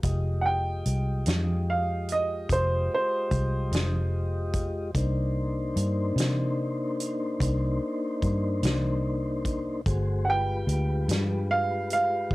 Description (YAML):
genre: slow blues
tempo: 49 BPM (dotted quarters)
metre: 12/8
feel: straight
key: C minor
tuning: A4 = 440 Hz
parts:
  - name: mellow tonewheel organ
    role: sustained chords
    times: 0.0-12.3 s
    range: Ab3 to Eb5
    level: -32 LUFS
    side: left 2 dB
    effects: slow rotary speaker, cassette tape
  - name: vintage muted fingered electric bass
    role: bass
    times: 0.0-12.3 s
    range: F1 to C3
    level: -28 LUFS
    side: equal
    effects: none
  - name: natural country drum kit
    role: drums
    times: 0.0-12.3 s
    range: hi-hat, kick drum, snare drum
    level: -30 LUFS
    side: equal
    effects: none
  - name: warm upright piano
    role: second line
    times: 0.4-12.3 s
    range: C5 to G5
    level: -28 LUFS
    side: right 2 dB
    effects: cassette tape
room: light reverb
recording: home recording on cassette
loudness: -25 LUFS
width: side -19 dB against mid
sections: 0.0-12.3 A section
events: upright piano solo 0.0-12.3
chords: 0.0 Fm9; 5.0 Cm9; 9.9 G7b9